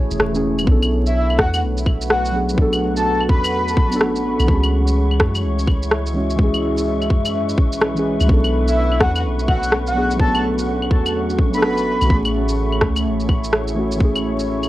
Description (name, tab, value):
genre	future garage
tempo	126 BPM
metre	4/4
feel	swing 63% on 16ths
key	B dorian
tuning	A4 = 440 Hz
part	muted felt-like synth keys	accompaniment	0.0-14.7 s	E3 to A4	-22 LUFS	equal	chorus, sidechain pumping, analog delay
part	deep dark ambient pad	sustained chords	0.0-14.7 s	G#3 to F#5	-25 LUFS	equal	chorus, built-in reverb, sidechain pumping
part	soft 808-style bass	bass	0.1-14.7 s	E1 to F#2	-22 LUFS	equal	sidechain pumping
part	electronic shaker, rim click and claves	drums	0.1-14.7 s	none	-22 LUFS	equal	studio reverb, cassette tape
part	electronic kick drum	drums	0.7-14.1 s	none	-17 LUFS	equal	studio reverb, cassette tape
part	wind-like tuned noise texture	texture	1.6-14.7 s	C#4 to C#6	-32 LUFS	equal	built-in reverb
part	breathy flute-like synth lead	melody	1.1-4.0, 8.7-12.2 s	E5 to B5	-24 LUFS	equal	ensemble chorus, cassette tape, analog delay
room	light reverb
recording	home recording on cassette, vinyl crackle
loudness	-15 LUFS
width	side -16 dB against mid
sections	0.0-14.7 A section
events	none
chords	0.0 Amaj7; 0.7 Bm7; 4.5 C#m; 8.3 Bm7; 12.1 Amaj7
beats	0.20 | 0.67 1.15 1.62 2.10 | 2.58 3.05 3.53 4.00 | 4.48 4.96 5.43 5.91 | 6.39 6.86 7.34 7.82 | 8.29 8.77 9.24 9.72 | 10.20 10.67 11.15 11.62 | 12.10 12.58 13.05 13.53 | 14.01 14.48